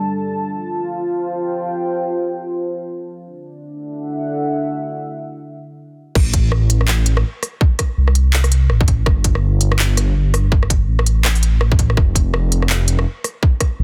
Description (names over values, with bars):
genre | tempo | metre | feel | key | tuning
half-time drum and bass | 165 BPM | 4/4 | swing 59% on 16ths, half-time | A minor | A4 = 440 Hz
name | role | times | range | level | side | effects
dark analog pad | sustained chords | 0.0-6.2 s | G3 to A5 | -24 LUFS | equal | chorus, sidechain pumping
dark detuned saw bass | bass | 6.2-13.8 s | F1 to C2 | -17 LUFS | equal | none
electronic kick drum | drums | 6.2-13.7 s | none | -17 LUFS | equal | overdrive
industrial drum kit | drums | 6.2-13.7 s | crash cymbal, handclaps, hi-hat, rim click | -24 LUFS | equal | low-pass filter on snare, low-pass filter on cymbals, low-pass filter on hats
room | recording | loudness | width
light reverb | dense, heavily limited modern master | -17 LUFS | mono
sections
0.0-6.2 A section; 6.2-13.8 B section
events
break 5.4-6.2; drop 6.2-13.8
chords
0.3 Fadd9; 3.2 D; 6.2 Am; 9.1 Gsus2; 12.0 N.C.